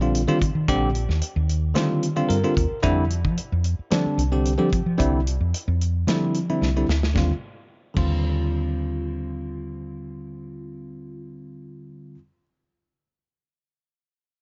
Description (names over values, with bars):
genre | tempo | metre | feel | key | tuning
electric jazz fusion | 111 BPM | 4/4 | straight | Eb major | A4 = 436 Hz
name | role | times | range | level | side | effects
barky tine electric piano | accompaniment | 0.0-12.2 s | D3 to Bb4 | -28 LUFS | equal | phaser
woody fretless electric bass | bass | 0.0-12.2 s | Bb1 to F3 | -26 LUFS | equal | none
modern studio drum kit | drums | 0.1-8.1 s | crash cymbal, hi-hat, kick drum, snare drum | -30 LUFS | equal | none
room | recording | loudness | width
light reverb, small room ambience | nothing above 7.5 kHz | -23 LUFS | mono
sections
0.0-7.2 A section; 7.2-11.5 B section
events
tine electric piano fill 2.0-2.8; drum fill 6.6-7.2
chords
0.0 Ebmaj9; 2.8 Fsus2; 7.2 Ebmaj9